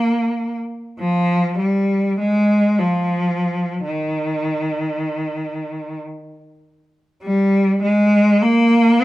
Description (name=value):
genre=classical, free, expressive piece for unaccompanied cello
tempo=41-73 BPM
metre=3/4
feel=rubato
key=Eb major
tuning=A4 = 440 Hz
part: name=clear cello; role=solo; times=0.0-9.0 s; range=Eb3 to C4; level=-16 LUFS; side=equal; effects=none
room=light reverb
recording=close, detailed microphones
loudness=-16 LUFS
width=side -17 dB against mid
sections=0.0-7.2 A section; 7.2-9.0 A section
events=none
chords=none